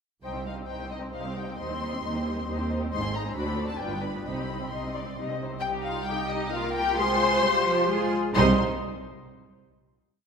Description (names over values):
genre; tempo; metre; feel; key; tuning
quick classical-period movement for string orchestra; 132 BPM; 3/4; straight; C minor; A4 = 441 Hz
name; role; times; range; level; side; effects
muted symphonic violin section; melody; 0.2-8.6 s; Eb5 to C6; -30 LUFS; left 5 dB; none
muted symphonic violin section; second line; 0.2-8.6 s; Eb4 to Eb5; -31 LUFS; left 1 dB; none
muted symphonic viola section; accompaniment; 0.2-8.6 s; F3 to G4; -31 LUFS; equal; none
muted symphonic double bass section; bass; 0.2-8.6 s; G1 to Eb2; -34 LUFS; right 2 dB; none
muted symphonic cello section; bass; 0.3-8.6 s; C2 to Bb4; -33 LUFS; right 3 dB; none
room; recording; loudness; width
wet scoring stage reverb, RT60 1.7 s; minimal, uncompressed stereo recording; -25 LUFS; side -6 dB against mid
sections
0.2-5.6 A section; 5.6-8.4 coda; 8.4-9.7 final chord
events
none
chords
0.2 Cm; 1.6 Cm/Eb; 2.9 Ab; 3.4 D7; 3.8 G7; 4.3 Cm; 7.0 Fm/C; 8.4 Cm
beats
| 0.24 0.69 1.14 | 1.59 2.04 2.48 | 2.92 3.36 3.81 | 4.26 4.71 5.17 | 5.62 6.07 6.53 | 6.99 7.44 7.90 | 8.37